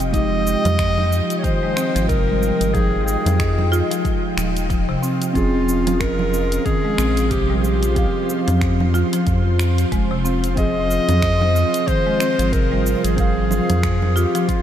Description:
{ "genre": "organic downtempo", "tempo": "92 BPM", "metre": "4/4", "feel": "swing 58% on 16ths", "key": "unclear", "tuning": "A4 = 443 Hz", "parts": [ { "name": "muted felt-like synth keys", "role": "accompaniment", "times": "0.0-14.6 s", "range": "Ab3 to G5", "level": "-26 LUFS", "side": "equal", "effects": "chorus, sidechain pumping, analog delay" }, { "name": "ethereal airy pad", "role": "sustained chords", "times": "0.0-14.6 s", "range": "F3 to G5", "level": "-26 LUFS", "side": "equal", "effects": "ensemble chorus, built-in reverb, sidechain pumping" }, { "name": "round analog bass", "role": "bass", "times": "0.0-14.3 s", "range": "Eb1 to F2", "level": "-20 LUFS", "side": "equal", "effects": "none" }, { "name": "deep house drum kit", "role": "drums", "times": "0.0-14.6 s", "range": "cabasa, congas, finger snaps, hi-hat", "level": "-29 LUFS", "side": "right 2 dB", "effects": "none" }, { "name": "clear clarinet", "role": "melody", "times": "0.1-14.6 s", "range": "F4 to Eb5", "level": "-23 LUFS", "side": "equal", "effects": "analog delay" }, { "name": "buzzing marimba with medium mallets", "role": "arpeggios", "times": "0.1-14.5 s", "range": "C3 to F4", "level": "-24 LUFS", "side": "equal", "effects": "analog delay" }, { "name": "electronic kick drum", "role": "drums", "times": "0.1-14.6 s", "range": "none", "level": "-23 LUFS", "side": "equal", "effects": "none" } ], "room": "moderate huge ambient reverb, RT60 7.2 s", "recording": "dreamy mix soaked in reverb", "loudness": "-16 LUFS", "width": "side -10 dB against mid", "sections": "0.0-14.6 A section", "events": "none", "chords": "0.0 Fm9; 5.4 Bbm7/F (rootless)" }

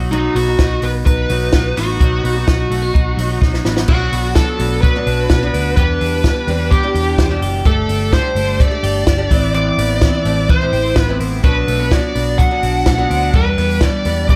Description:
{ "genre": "jangly indie pop", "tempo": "127 BPM", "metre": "4/4", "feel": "straight", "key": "unclear", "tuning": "A4 = 436 Hz", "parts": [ { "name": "picked twelve-string acoustic guitar", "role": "accompaniment", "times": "0.0-14.4 s", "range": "E2 to G4", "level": "-27 LUFS", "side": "equal", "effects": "none" }, { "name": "twelve-string electric guitar", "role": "arpeggios", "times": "0.0-14.4 s", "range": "E3 to G4", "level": "-25 LUFS", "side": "equal", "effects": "slapback echo" }, { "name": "vintage muted picked electric bass", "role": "bass", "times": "0.0-14.3 s", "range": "F#1 to E2", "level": "-22 LUFS", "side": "equal", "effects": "none" }, { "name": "smooth overdriven lead guitar", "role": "melody", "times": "0.1-14.4 s", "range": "D#4 to F#5", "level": "-22 LUFS", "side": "equal", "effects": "slapback echo" }, { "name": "compact cocktail drum kit", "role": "drums", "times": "0.1-14.4 s", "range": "crash cymbal, hi-hat, kick drum, snare drum", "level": "-19 LUFS", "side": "equal", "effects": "none" } ], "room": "light reverb", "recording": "none", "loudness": "-15 LUFS", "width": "mono", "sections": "0.0-3.9 A section; 3.9-14.4 B section", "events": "drum fill 3.4-3.9", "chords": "0.0 B; 3.9 Bm; 5.8 Em7; 7.7 Gsus2; 9.3 Amadd9; 11.4 Bm; 13.3 Em7" }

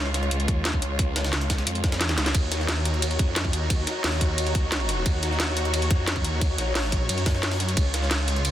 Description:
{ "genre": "dark technical drum and bass", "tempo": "177 BPM", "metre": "4/4", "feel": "straight", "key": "Eb minor", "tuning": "A4 = 442 Hz", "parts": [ { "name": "dark symphonic string section", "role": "sustained chords", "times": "0.0-8.5 s", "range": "Ab3 to Db5", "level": "-30 LUFS", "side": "left 2 dB", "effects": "sidechain pumping" }, { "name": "snarling distorted saw bass", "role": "bass", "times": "0.0-8.5 s", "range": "Bb1 to Gb2", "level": "-26 LUFS", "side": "equal", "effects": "distortion, overdrive" }, { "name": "drum and bass drum kit", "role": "drums", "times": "0.1-8.5 s", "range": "hi-hat, ride cymbal, snare drum", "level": "-27 LUFS", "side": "right 1 dB", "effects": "none" }, { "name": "jungle sampler-style drum kit", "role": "drums", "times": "0.1-8.5 s", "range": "hi-hat, snare drum", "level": "-34 LUFS", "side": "equal", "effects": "none" }, { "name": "electronic kick drum", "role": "drums", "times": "0.5-7.8 s", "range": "none", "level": "-24 LUFS", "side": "equal", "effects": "none" } ], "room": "light reverb, digital ambience", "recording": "dense, heavily limited modern master", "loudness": "-22 LUFS", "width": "side -12 dB against mid", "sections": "0.0-8.5 A section", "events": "drum fill 2.1", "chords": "0.0 Db; 2.3 Ebm7; 7.8 Db" }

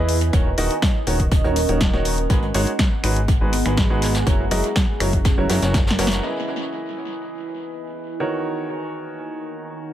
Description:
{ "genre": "piano house", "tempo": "122 BPM", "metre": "4/4", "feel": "straight", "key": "unclear", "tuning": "A4 = 441 Hz", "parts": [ { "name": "clear upright piano", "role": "riff", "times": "0.0-9.9 s", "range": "D#3 to D#5", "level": "-26 LUFS", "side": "right 1 dB", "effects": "sidechain pumping, tape echo" }, { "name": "plucky analog bass", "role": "bass", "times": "0.0-6.2 s", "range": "D#1 to E2", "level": "-22 LUFS", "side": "equal", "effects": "sidechain pumping" }, { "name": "deep dark ambient pad", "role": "texture", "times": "0.0-9.9 s", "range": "B3 to G#5", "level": "-27 LUFS", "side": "right 2 dB", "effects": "chorus, built-in reverb, sidechain pumping" }, { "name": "house drum kit", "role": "drums", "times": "0.1-6.2 s", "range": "finger snaps, hi-hat, snare drum", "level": "-26 LUFS", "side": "left 1 dB", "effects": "small room ambience, tape echo" }, { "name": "electronic kick drum", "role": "drums", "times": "0.3-5.8 s", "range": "none", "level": "-19 LUFS", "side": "equal", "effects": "small room ambience" }, { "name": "vintage brush drum kit", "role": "drums", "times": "0.3-6.2 s", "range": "hi-hat, snare drum", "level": "-34 LUFS", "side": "equal", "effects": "high-pass filter on hats, small room ambience, high-pass filter on snare, high-pass filter on room, tape echo" } ], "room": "light reverb, small room ambience", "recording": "echo-heavy mix", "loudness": "-18 LUFS", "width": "side -12 dB against mid", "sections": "0.0-6.2 A section; 6.2-9.9 B section", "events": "drum fill 5.7-6.2; band accent 6.1", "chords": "0.3 D#m7; 2.3 G#m7; 4.3 F#7; 6.2 Emaj7; 8.2 D#m7" }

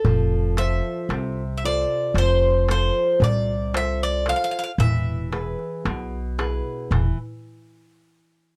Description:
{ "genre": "greek folk, Greek bouzouki band", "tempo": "114 BPM (eighths)", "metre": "9/8", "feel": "straight", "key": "unclear", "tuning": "A4 = 440 Hz", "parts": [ { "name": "Greek bouzouki", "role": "melody", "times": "0.0-8.5 s", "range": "A4 to F5", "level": "-25 LUFS", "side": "equal", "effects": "none" }, { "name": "upright bass", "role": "bass", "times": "0.0-7.1 s", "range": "E1 to C2", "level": "-26 LUFS", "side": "equal", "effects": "none" }, { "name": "darbuka", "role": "percussion", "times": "0.0-7.2 s", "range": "none", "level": "-27 LUFS", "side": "equal", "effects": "none" }, { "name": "nylon-string guitar", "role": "accompaniment", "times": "0.1-7.2 s", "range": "B2 to C5", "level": "-32 LUFS", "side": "equal", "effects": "none" } ], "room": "little or no reverb", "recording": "dry, close 1970s-style studio recording", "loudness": "-23 LUFS", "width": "mono", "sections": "0.0-8.6 A section", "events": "stop 7.2-8.6", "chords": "0.1 F; 4.8 E" }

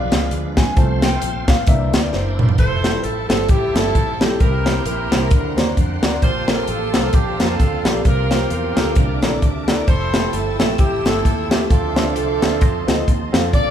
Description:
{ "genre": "uptempo gospel", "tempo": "132 BPM", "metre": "4/4", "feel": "swing 57% on 8ths", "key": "F major", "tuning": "A4 = 440 Hz", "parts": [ { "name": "warm grand piano", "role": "accompaniment", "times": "0.0-13.7 s", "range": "Bb2 to A5", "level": "-25 LUFS", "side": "left 2 dB", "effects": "none" }, { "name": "bright tonewheel organ", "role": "sustained chords", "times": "0.0-13.7 s", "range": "D3 to F#5", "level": "-30 LUFS", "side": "right 2 dB", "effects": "slow rotary speaker, chorus vibrato" }, { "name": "fingered electric bass", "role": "bass", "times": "0.0-13.7 s", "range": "F1 to E#2", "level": "-24 LUFS", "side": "equal", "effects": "none" }, { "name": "tight funk drum kit", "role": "drums", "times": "0.1-13.7 s", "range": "hi-hat, kick drum, snare drum, toms", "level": "-17 LUFS", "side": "equal", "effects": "none" }, { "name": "clear saxophone section", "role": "melody", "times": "2.6-13.7 s", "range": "C4 to D5", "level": "-22 LUFS", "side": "right 2 dB", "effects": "none" }, { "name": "rich studio string section", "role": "sustained chords", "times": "2.6-13.7 s", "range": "C5 to E6", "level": "-32 LUFS", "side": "left 2 dB", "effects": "none" } ], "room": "moderate large studio reverb, RT60 1.3 s", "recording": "band playing live in one room", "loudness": "-15 LUFS", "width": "side -9 dB against mid", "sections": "0.0-2.6 A section; 2.6-13.7 B section", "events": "grand piano solo 0.0-2.6; drum fill 2.1-2.6", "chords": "0.0 Bdim7; 0.8 F/C; 1.7 C9; 2.6 Fmaj9; 4.4 C7; 5.3 D7alt; 6.2 Gm11; 8.1 C7sus4; 9.0 C13; 9.9 Fmaj9; 11.7 Dm9; 12.6 F7" }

